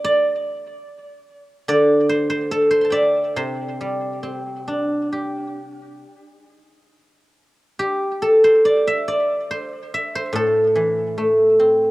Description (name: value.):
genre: chinese traditional, Chinese solo plucked strings.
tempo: 71 BPM.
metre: 4/4.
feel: rubato.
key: C gong mode.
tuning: A4 = 440 Hz.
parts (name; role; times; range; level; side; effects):
guzheng; solo; 0.0-11.9 s; A2 to C6; -17 LUFS; equal; cassette tape, tape echo.
room: moderate spring reverb, RT60 2.1 s.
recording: home recording on cassette.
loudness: -17 LUFS.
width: side -18 dB against mid.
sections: 0.0-6.9 A section; 6.9-11.9 B section.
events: none.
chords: none.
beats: | 0.05 0.87 1.71 2.54 | 3.38 4.23 5.11 6.04 | 6.93 7.79 8.65 9.51 | 10.35 11.17.